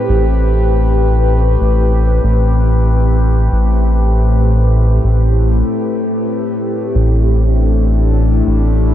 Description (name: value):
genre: ambient dub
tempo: 70 BPM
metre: 4/4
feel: swing 54% on 16ths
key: A minor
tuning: A4 = 440 Hz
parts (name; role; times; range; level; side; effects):
- warbly tape-like pad; sustained chords; 0.0-8.9 s; A2 to B4; -16 LUFS; left 1 dB; chorus, built-in reverb, phaser, vintage 12-bit sampler grit
- round analog bass; bass; 0.1-8.9 s; A1; -12 LUFS; equal; none
room: light reverb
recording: none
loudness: -11 LUFS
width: side -12 dB against mid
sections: 0.0-8.9 A section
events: none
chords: 0.0 Am7; 7.0 Cadd9/A